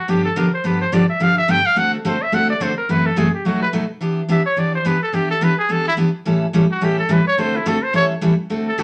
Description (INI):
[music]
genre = country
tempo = 214 BPM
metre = 4/4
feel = swing 60% on 8ths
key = D mixolydian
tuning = A4 = 444 Hz
[part]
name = clear trumpet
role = melody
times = 0.0-8.8 s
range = E4 to G5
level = -21 LUFS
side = equal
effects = none
[part]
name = picked steel-string acoustic guitar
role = accompaniment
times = 0.1-8.8 s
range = F#2 to A4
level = -20 LUFS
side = equal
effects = none
[sound]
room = wet studio reverb, RT60 0.6 s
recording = none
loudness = -18 LUFS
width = mono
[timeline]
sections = 0.0-8.5 A section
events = trumpet solo 0.0-8.5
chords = 0.0 G7; 1.8 D7; 2.9 F#m7b5; 3.4 B7; 4.0 Em7; 6.3 A7; 7.4 D7; 7.9 A7